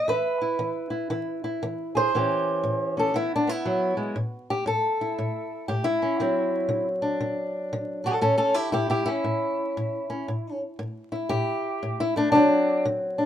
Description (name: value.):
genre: acoustic country blues, solo or duo.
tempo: 118 BPM.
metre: 4/4.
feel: swing 63% on 8ths.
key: unclear.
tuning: A4 = 441 Hz.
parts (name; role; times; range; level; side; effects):
fingerpicked old ladder-braced acoustic guitar; solo; 0.0-13.3 s; A2 to E5; -23 LUFS; equal; none.
room: light reverb.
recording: minimal, uncompressed stereo recording, vinyl crackle.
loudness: -23 LUFS.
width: side -10 dB against mid.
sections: 0.0-4.2 A section; 4.2-13.3 B section.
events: steel-string acoustic guitar solo 4.2-13.3.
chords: 0.0 E5; 2.1 A7; 3.1 E; 4.2 A5; 6.2 D7; 8.2 A7; 12.3 D7.